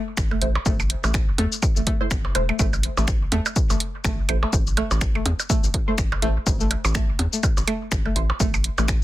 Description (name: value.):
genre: minimal techno.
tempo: 124 BPM.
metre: 4/4.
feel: swing 57% on 16ths.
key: A minor.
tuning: A4 = 440 Hz.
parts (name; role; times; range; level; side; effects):
rubbery square bass; bass; 0.2-9.0 s; E1 to E2; -24 LUFS; equal; sidechain pumping.
electronic kick drum; drums; 0.2-9.0 s; none; -23 LUFS; equal; none.
punchy analog drum machine; drums; 0.2-9.0 s; cabasa, finger snaps, hi-hat; -27 LUFS; left 1 dB; soft clipping on snare.
string-like resonator pluck; riff; 0.3-8.8 s; A3 to B3; -29 LUFS; equal; chorus, sidechain pumping, digital delay.
percussion blips; percussion; 0.3-8.9 s; none; -28 LUFS; right 3 dB; dub echo.
filtered dub chord stab; stabs; 0.4-8.2 s; A3 to C5; -31 LUFS; right 2 dB; phaser, wide subtle chorus, dub echo.
room: little or no reverb.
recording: dense, heavily limited modern master.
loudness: -20 LUFS.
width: side -15 dB against mid.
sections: 0.0-9.0 A section.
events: none.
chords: none.